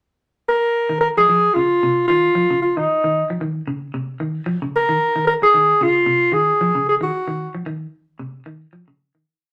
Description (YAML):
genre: afrobeat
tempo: 113 BPM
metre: 4/4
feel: swing 55% on 16ths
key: Bb minor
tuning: A4 = 443 Hz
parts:
  - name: breathy alto saxophone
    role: melody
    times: 0.5-7.5 s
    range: Eb4 to Bb4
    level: -17 LUFS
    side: equal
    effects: none
  - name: semi-hollow electric guitar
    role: arpeggios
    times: 0.9-9.2 s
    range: C3 to F3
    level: -28 LUFS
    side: equal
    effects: none
room: wet studio reverb, RT60 0.6 s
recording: rough rehearsal-room recording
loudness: -18 LUFS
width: mono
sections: 0.0-0.8 pickup bar; 0.8-9.3 groove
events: fade-out 7.1-9.3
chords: 0.0 N.C.; 0.8 Bbmadd9/C (rootless)